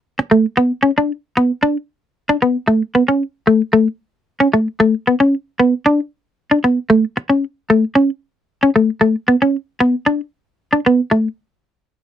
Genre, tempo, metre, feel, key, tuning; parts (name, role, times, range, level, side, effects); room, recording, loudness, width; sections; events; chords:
highlife; 114 BPM; 4/4; straight; A major; A4 = 440 Hz
semi-hollow electric guitar; solo; 0.2-11.3 s; A3 to D4; -12 LUFS; equal; analog chorus
light reverb; dry, close 1970s-style studio recording; -14 LUFS; side -10 dB against mid
0.0-2.7 A section; 2.7-11.1 B section